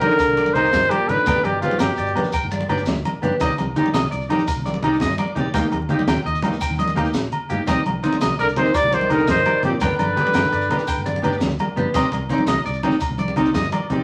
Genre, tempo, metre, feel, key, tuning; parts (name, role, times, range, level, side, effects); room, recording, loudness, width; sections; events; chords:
highlife guitar band; 112 BPM (dotted quarters); 12/8; straight; C minor; A4 = 440 Hz
warm trumpet; melody; 0.0-2.3, 8.4-11.2 s; F4 to D5; -21 LUFS; equal
trombone with bucket mute; second line; 0.0-2.3, 8.4-11.2 s; Ab2 to G3; -30 LUFS; equal
fingerpicked steel-string acoustic guitar; accompaniment; 0.0-14.0 s; Bb3 to Eb5; -27 LUFS; equal
electric guitar at the edge of break-up; arpeggios; 0.0-13.8 s; Eb4 to G5; -27 LUFS; equal
compact cocktail drum kit; drums; 0.0-14.0 s; hi-hat, kick drum, snare drum; -28 LUFS; equal
agogo bells; percussion; 0.0-13.9 s; -31 LUFS; equal
congas; percussion; 0.0-14.0 s; -28 LUFS; equal
maracas; percussion; 0.1-13.7 s; -42 LUFS; equal
fingered electric bass; bass; 0.3-14.0 s; G1 to C3; -32 LUFS; equal
wet studio reverb, RT60 0.6 s; vinyl crackle; -20 LUFS; mono
0.0-14.0 A section
drum fill 7.1-7.7
0.0 Cmadd9; 1.3 G; 3.4 Cmadd9; 5.5 Eb; 7.7 Cmadd9; 9.8 G; 11.9 Cmadd9